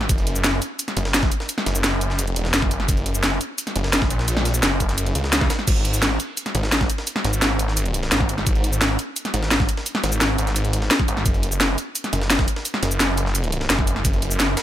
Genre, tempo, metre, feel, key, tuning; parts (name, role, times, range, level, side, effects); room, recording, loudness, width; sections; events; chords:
dark technical drum and bass; 172 BPM; 4/4; straight; A4 = 440 Hz
snarling distorted saw bass; bass; 0.0-14.6 s; F#1 to C#2; -22 LUFS; equal; distortion, tube saturation
drum and bass drum kit; drums; 0.0-14.6 s; crash cymbal, hi-hat, shaker, snare drum; -22 LUFS; equal; overdrive
breakbeat sampler-style drum kit; drums; 0.1-14.6 s; hi-hat, snare drum; -31 LUFS; right 1 dB
electronic kick drum; drums; 0.1-14.1 s; -22 LUFS; equal; overdrive
little or no reverb; -18 LUFS; side -12 dB against mid
0.0-14.6 A section